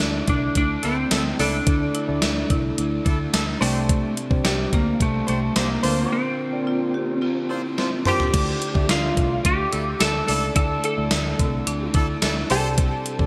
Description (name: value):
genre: 1980s-style pop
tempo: 108 BPM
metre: 4/4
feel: straight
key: unclear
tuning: A4 = 436 Hz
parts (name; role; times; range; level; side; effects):
- lightly driven lead guitar; melody; 0.0-13.3 s; G3 to A4; -27 LUFS; equal; analog chorus, shimmer reverb
- mellow tine electric piano; accompaniment; 0.0-13.3 s; C3 to E5; -32 LUFS; equal; shimmer reverb
- overdriven electric guitar; accompaniment; 0.0-13.3 s; Bb2 to D4; -38 LUFS; equal; analog chorus, shimmer reverb
- vintage muted fingered electric bass; bass; 0.0-13.3 s; C2 to D2; -29 LUFS; equal; none
- gated 80s digital drum machine; drums; 0.0-13.3 s; crash cymbal, hi-hat, kick drum, snare drum, tambourine, toms; -25 LUFS; equal; gated reverb, gated reverb snare
- clear horn section; stabs; 0.8-12.7 s; D4 to C5; -32 LUFS; equal; shimmer reverb
- marimba with medium hard mallets; second line; 1.9-12.3 s; C4 to A4; -34 LUFS; equal; shimmer reverb, digital delay
room: moderate lush hall reverb, RT60 2.4 s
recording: bright 1980s-style digital production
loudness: -22 LUFS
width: mono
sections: 0.0-8.3 A section; 8.3-13.3 A section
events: drum fill 7.8-8.3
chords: 0.0 Dsus2; 3.6 Csus2; 5.8 Bbadd9/D; 8.3 Dsus2; 12.5 Csus2